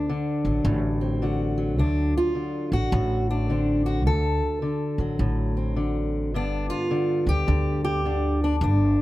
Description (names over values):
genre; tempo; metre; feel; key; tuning
acoustic country blues, solo or duo; 106 BPM; 4/4; swing 63% on 8ths; D mixolydian; A4 = 440 Hz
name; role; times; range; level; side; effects
fingerpicked steel-string acoustic guitar; melody; 0.0-9.0 s; D2 to A4; -24 LUFS; left 1 dB; none
upright bass; bass; 0.4-9.0 s; G1 to D2; -25 LUFS; equal; none
room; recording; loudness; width
little or no reverb; close, detailed microphones; -22 LUFS; side -16 dB against mid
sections
0.0-9.0 A section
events
none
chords
0.0 D7; 6.3 G7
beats
0.09 0.66 1.23 | 1.79 2.36 2.93 3.50 | 4.07 4.63 5.20 5.77 | 6.34 6.91 7.48 8.04 | 8.61